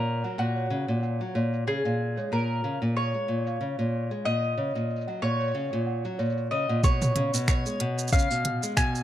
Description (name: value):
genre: folktronica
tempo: 93 BPM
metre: 4/4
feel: swing 56% on 16ths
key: Db mixolydian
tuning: A4 = 441 Hz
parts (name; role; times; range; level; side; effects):
- mandolin; melody; 0.0-9.0 s; Gb4 to Ab5; -30 LUFS; left 1 dB; plate reverb, tape echo
- celesta; second line; 0.0-6.9 s; Db5 to Gb5; -36 LUFS; right 3 dB; plate reverb, tape echo
- nylon-string guitar; arpeggios; 0.0-9.0 s; Bb2 to Ab3; -28 LUFS; equal; plate reverb, tape echo
- organic electronic drum kit; drums; 0.2-9.0 s; finger snaps, hi-hat, shaker, toms; -30 LUFS; right 2 dB; low-pass filter on perc, low-pass filter on toms, low-pass filter on hats, low-pass filter on snare
- electronic kick drum; drums; 6.8-8.9 s; none; -23 LUFS; equal; none
room: moderate small room reverb, RT60 0.6 s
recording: dark, warm production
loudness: -25 LUFS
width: side -12 dB against mid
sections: 0.0-6.8 A section; 6.8-9.0 B section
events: none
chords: 0.0 Gb; 1.7 Bbm7; 4.3 Ebm7; 6.8 Db7